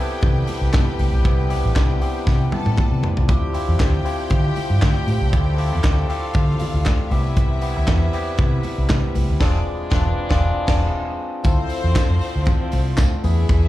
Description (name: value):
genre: disco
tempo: 118 BPM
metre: 4/4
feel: straight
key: unclear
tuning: A4 = 441 Hz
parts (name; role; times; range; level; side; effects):
- clear studio string section; second line; 0.0-13.7 s; C4 to A5; -31 LUFS; left 1 dB; none
- overdriven tine electric piano; accompaniment; 0.0-13.7 s; B3 to B4; -27 LUFS; left 2 dB; phaser, slapback echo
- muted French horn section; sustained chords; 0.0-13.7 s; C3 to B4; -32 LUFS; right 1 dB; none
- vintage muted fingered electric bass; bass; 0.2-13.7 s; E1 to D3; -19 LUFS; equal; none
- tight funk drum kit; drums; 0.2-13.6 s; crash cymbal, handclaps, hi-hat, kick drum, snare drum, toms; -21 LUFS; equal; none
- congas; percussion; 0.2-13.6 s; none; -30 LUFS; left 1 dB; slapback echo
- tambourine; percussion; 11.4-13.6 s; none; -42 LUFS; right 1 dB; none
room: small room reverb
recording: live gig heard through the venue's PA, club reverb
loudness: -17 LUFS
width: side -15 dB against mid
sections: 0.0-11.4 A section; 11.4-13.7 B section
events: drum fill 2.3-3.3; band accent 9.4-11.4; tine electric piano fill 10.7-11.4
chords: 0.0 Am9; 3.3 Dm11; 7.1 Cmaj9; 9.4 E7b9b13; 11.4 Dm7